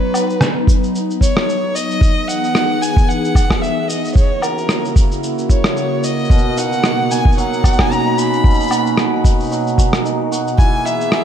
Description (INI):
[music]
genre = folktronica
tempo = 112 BPM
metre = 4/4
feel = swing 56% on 16ths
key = B major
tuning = A4 = 441 Hz
[part]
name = dark violin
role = melody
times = 0.0-11.2 s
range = A#4 to B5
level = -21 LUFS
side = equal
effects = tape echo
[part]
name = warbly tape-like pad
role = sustained chords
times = 0.0-11.2 s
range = B2 to A#5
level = -20 LUFS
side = equal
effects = chorus, built-in reverb
[part]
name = electronic woodblock, cabasa and rim click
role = drums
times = 0.1-11.2 s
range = none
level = -21 LUFS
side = right 1 dB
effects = none
[part]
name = electronic kick drum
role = drums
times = 0.7-10.7 s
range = none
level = -13 LUFS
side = equal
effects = none
[part]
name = hammered dulcimer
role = arpeggios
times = 6.3-11.2 s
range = B2 to G#4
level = -21 LUFS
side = right 1 dB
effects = tape echo
[sound]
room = light reverb, digital ambience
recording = none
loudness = -13 LUFS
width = side -9 dB against mid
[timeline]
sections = 0.0-11.2 A section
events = none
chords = 0.0 Bmaj7; 2.0 Emaj7; 4.2 F#7; 6.3 Bmaj7; 10.6 Emaj7